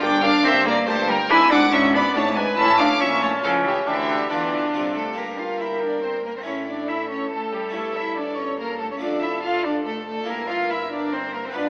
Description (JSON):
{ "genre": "classical, baroque-style concerto movement with solo episodes", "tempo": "141 BPM", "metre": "3/4", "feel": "straight", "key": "D minor", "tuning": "A4 = 443 Hz", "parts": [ { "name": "dark cello", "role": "melody", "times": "0.0-11.7 s", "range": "D3 to F4", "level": "-26 LUFS", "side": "equal", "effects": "none" }, { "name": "warm chamber violin section", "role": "melody", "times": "0.0-11.7 s", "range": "C#5 to E6", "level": "-31 LUFS", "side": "equal", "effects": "none" }, { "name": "rich chamber violin section", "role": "second line", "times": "0.0-11.7 s", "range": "F4 to A5", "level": "-28 LUFS", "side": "equal", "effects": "none" }, { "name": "harpsichord", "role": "accompaniment", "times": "0.0-11.7 s", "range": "F2 to G4", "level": "-36 LUFS", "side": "equal", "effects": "none" }, { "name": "warm chamber viola section", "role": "accompaniment", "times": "0.0-11.7 s", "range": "Bb3 to B4", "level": "-30 LUFS", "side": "equal", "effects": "none" }, { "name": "rich chamber cello section", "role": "bass", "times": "0.0-11.7 s", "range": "F2 to E3", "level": "-34 LUFS", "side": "equal", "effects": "none" }, { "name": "warm studio double bass section", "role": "bass", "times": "0.0-11.7 s", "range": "F1 to E2", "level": "-39 LUFS", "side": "equal", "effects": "none" } ], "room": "wet recital hall reverb, RT60 1.6 s", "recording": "AM radio sound", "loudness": "-22 LUFS", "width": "mono", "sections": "0.0-5.2 A section; 5.2-11.7 B section", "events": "none", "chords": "0.0 Gm; 1.3 E7/G#; 2.6 A; 3.9 Dm; 5.2 Gm; 6.5 A; 7.7 A7/G; 9.0 Dm/F; 10.3 Edim/G" }